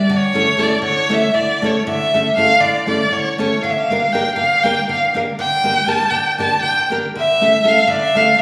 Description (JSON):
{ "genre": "balkan folk", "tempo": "238 BPM (eighths)", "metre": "7/8", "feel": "straight", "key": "unclear", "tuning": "A4 = 440 Hz", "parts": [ { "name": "rich violin", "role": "melody", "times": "0.0-8.4 s", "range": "C#5 to A5", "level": "-17 LUFS", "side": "equal", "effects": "none" }, { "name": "nylon-string guitar", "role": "accompaniment", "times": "0.1-8.4 s", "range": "D3 to Bb4", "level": "-22 LUFS", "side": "equal", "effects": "none" } ], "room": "wet recital hall reverb, RT60 1.4 s", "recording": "recorded in a church or concert hall, studio reverb", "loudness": "-16 LUFS", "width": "mono", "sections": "0.0-8.4 A section", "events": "none", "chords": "0.1 A/D; 3.6 Gm/D; 7.2 A/D" }